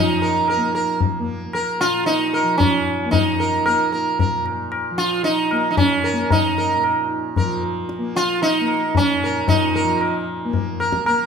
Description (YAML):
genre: indian classical, Hindustani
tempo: 113 BPM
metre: 3/4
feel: straight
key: unclear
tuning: A4 = 445 Hz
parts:
  - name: sitar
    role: melody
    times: 0.0-11.3 s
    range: Db4 to Bb4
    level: -19 LUFS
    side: right 2 dB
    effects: none
  - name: tanpura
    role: drone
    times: 0.0-11.3 s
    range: Bb2 to Bb3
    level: -27 LUFS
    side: left 1 dB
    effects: none
  - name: tabla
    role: percussion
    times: 0.5-11.3 s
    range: none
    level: -22 LUFS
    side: left 5 dB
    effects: none
room: wet recital hall reverb, RT60 1.4 s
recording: minimal, uncompressed stereo recording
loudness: -17 LUFS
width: side -6 dB against mid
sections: 0.0-11.3 A section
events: none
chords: none